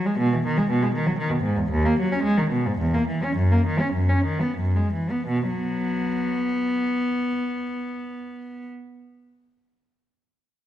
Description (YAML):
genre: classical, baroque-style suite movement for unaccompanied cello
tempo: 83-122 BPM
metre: 3/4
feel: rubato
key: B major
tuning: A4 = 438 Hz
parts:
  - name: rich cello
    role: solo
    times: 0.0-8.7 s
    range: D#2 to C#4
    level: -21 LUFS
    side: equal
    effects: none
room: wet recital hall reverb, RT60 1.5 s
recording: dark, warm production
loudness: -21 LUFS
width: side -12 dB against mid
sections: 0.0-5.3 A section; 5.3-9.3 B section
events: slowing down 0.9-5.3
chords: 0.2 B; 1.7 B/D#; 2.8 C#m/E; 3.4 B/F#; 4.6 F#9sus4; 5.3 B5